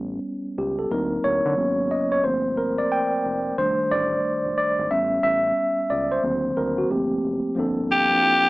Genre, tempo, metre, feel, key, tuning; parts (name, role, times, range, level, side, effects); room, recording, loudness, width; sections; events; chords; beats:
R&B, neo-soul; 90 BPM; 4/4; swing 63% on 16ths; G minor; A4 = 441 Hz
mellow tine electric piano; accompaniment; 0.0-8.5 s; Eb3 to G5; -21 LUFS; equal; medium stereo tremolo
round analog bass; bass; 0.0-8.5 s; F1 to D3; -33 LUFS; equal
raspy tenor saxophone; melody; 7.9-8.5 s; G4; -16 LUFS; left 1 dB
moderate studio reverb, RT60 0.5 s; small speaker sound; -20 LUFS; side -21 dB against mid
0.0-7.6 A section
tine electric piano solo 0.0-7.6
0.0 A7; 0.9 D7b9b13; 1.6 Abm11; 2.2 Gm11; 3.6 F13; 4.9 A7; 6.2 D7b9b13; 6.9 Gm11
0.22 0.89 1.55 | 2.22 2.89 3.55 4.22 | 4.89 5.55 6.22 6.89 | 7.55 8.22